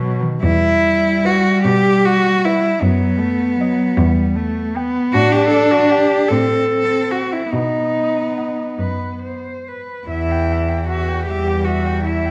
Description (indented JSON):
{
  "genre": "classical, lyrical piece for cello ensemble",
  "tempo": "46-53 BPM (dotted quarters)",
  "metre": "6/8",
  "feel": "rubato",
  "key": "E minor",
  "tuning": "A4 = 440 Hz",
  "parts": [
    { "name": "dark cello", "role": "accompaniment", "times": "0.0-12.3 s", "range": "D#3 to D4", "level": "-21 LUFS", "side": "equal", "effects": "none" },
    { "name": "warm cello", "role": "bass", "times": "0.0-12.3 s", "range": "E2 to B2", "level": "-23 LUFS", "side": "equal", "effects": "none" },
    { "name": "warm cello", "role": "second line", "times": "0.4-12.3 s", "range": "B3 to A4", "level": "-20 LUFS", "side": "equal", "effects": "none" },
    { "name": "dark cello", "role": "melody", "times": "1.2-12.3 s", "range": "B4 to G5", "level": "-33 LUFS", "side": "equal", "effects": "none" }
  ],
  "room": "moderate recital hall reverb, RT60 1.3 s",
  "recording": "worn, warbling old tape, cassette tape, warbly pitch drift",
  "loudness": "-17 LUFS",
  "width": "mono",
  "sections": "0.4-12.3 A section",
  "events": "none",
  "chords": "0.4 Em; 2.8 B/F#; 4.0 Em; 5.1 F#dim/A; 7.5 B; 10.1 Em"
}